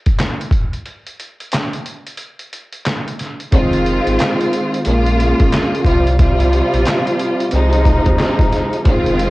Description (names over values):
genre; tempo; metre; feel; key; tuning
hip hop, boom-bap hip-hop; 90 BPM; 4/4; swing 62% on 16ths; F minor; A4 = 441 Hz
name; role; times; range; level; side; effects
trip hop sampler-style drum kit; drums; 0.1-9.3 s; handclaps, hi-hat, kick drum, snare drum; -17 LUFS; equal; cassette tape
warm studio string section; accompaniment; 3.5-9.3 s; C3 to F4; -15 LUFS; equal; high-pass filter, low-pass filter, cassette tape
sub bass with octave; bass; 3.5-9.3 s; F1 to Eb2; -17 LUFS; equal; none
room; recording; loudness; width
light reverb; home recording on cassette; -13 LUFS; side -19 dB against mid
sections
0.0-3.5 A section; 3.5-9.3 B section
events
break 0.0-3.5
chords
0.0 N.C.; 3.5 Fm7; 4.9 Bbm7; 5.9 Csus4; 7.5 Ab6/C